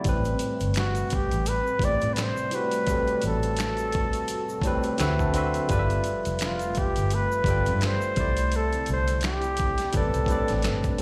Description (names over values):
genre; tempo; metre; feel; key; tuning
R&B, neo-soul; 85 BPM; 4/4; swing 57% on 16ths; A minor; A4 = 440 Hz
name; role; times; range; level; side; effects
barky tine electric piano; accompaniment; 0.0-11.0 s; A2 to C6; -32 LUFS; equal; overdrive, plate reverb, slapback echo
hollow soft pad; sustained chords; 0.0-11.0 s; C3 to B4; -41 LUFS; equal; none
boom bap sampler-style drum kit; drums; 0.0-11.0 s; finger snaps, hi-hat, kick drum, snare drum; -32 LUFS; equal; none
vintage muted fingered electric bass; bass; 0.1-10.9 s; F1 to A2; -30 LUFS; equal; none
egg shaker and finger snaps; percussion; 0.1-11.0 s; none; -46 LUFS; equal; slapback echo
breathy flugelhorn; melody; 0.8-11.0 s; F4 to D5; -30 LUFS; equal; plate reverb, slapback echo, tape echo
room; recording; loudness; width
light reverb; live gig heard through the venue's PA, recital hall reverb; -25 LUFS; mono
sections
0.0-11.0 A section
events
tine electric piano fill 4.6-5.7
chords
0.1 Am9; 5.0 D13; 5.7 G13; 8.2 C69; 9.9 Am11